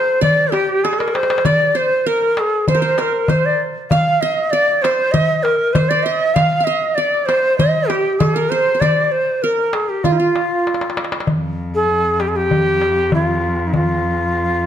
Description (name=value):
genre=Arabic maqam ensemble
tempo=98 BPM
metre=4/4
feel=straight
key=F maqam rast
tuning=A4 = 439 Hz
part: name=breathy bright ney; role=melody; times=0.0-14.7 s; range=Eb4+48c to F5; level=-16 LUFS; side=equal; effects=none
part: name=qanun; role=second line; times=0.0-11.5 s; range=F4 to F5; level=-22 LUFS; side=right 6 dB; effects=none
part: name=darbuka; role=percussion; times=0.1-14.4 s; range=none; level=-20 LUFS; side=left 1 dB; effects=none
part: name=rich cello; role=drone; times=11.3-14.7 s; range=F2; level=-22 LUFS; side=left 1 dB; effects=none
room=moderate recital hall reverb, RT60 1.4 s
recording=close, detailed microphones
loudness=-14 LUFS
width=side -10 dB against mid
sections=0.0-11.3 A section; 11.3-14.7 B section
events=drum fill 0.8-1.5, 10.7-11.3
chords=none